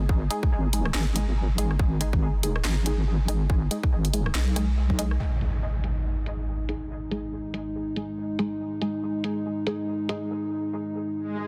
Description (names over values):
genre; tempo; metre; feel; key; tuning
deep dubstep; 141 BPM; 4/4; swing 58% on 16ths, half-time; G# minor; A4 = 441 Hz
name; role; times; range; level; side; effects
deep soft wobble bass; bass; 0.0-5.2 s; G#1 to B1; -27 LUFS; equal; chorus
electronic kick drum; drums; 0.1-5.0 s; none; -26 LUFS; equal; studio reverb
filtered dub chord stab; stabs; 0.3-10.2 s; G#3 to G#4; -36 LUFS; equal; phaser, subtle chorus, cassette tape, dub echo
garage drum kit; drums; 0.3-10.2 s; handclaps, hi-hat, rim click, snare drum; -35 LUFS; equal; low-pass filter on hats, studio reverb, low-pass filter on snare
dark analog pad; sustained chords; 5.2-11.5 s; G#3 to D#4; -33 LUFS; equal; chorus
impact and swell; sound effects; 5.2-6.9, 11.3-11.5 s; none; -32 LUFS; equal; none
room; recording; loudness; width
digital ambience; dense, heavily limited modern master; -27 LUFS; mono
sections
0.0-5.2 A section; 5.2-11.5 B section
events
impact 5.2-6.9; swell 11.3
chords
0.0 G#5